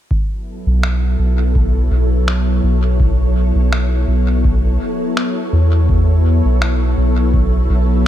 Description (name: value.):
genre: ambient dub.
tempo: 83 BPM.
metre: 4/4.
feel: swing 55% on 16ths.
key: unclear.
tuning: A4 = 440 Hz.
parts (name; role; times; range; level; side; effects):
soft additive organ-like pad; sustained chords; 0.5-8.1 s; F#3 to C#5; -20 LUFS; left 1 dB; ensemble chorus, built-in reverb.
electronic kick drum; drums; 0.1-7.5 s; none; -18 LUFS; equal; studio ambience.
soft dub sub bass; bass; 0.7-8.1 s; B1 to E2; -14 LUFS; equal; none.
electronic finger snaps; drums; 0.8-6.8 s; none; -25 LUFS; equal; overdrive, studio ambience, dub echo.
room: little or no reverb.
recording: none.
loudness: -13 LUFS.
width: side -12 dB against mid.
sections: 0.1-8.1 A section.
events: none.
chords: 0.1 B9sus4.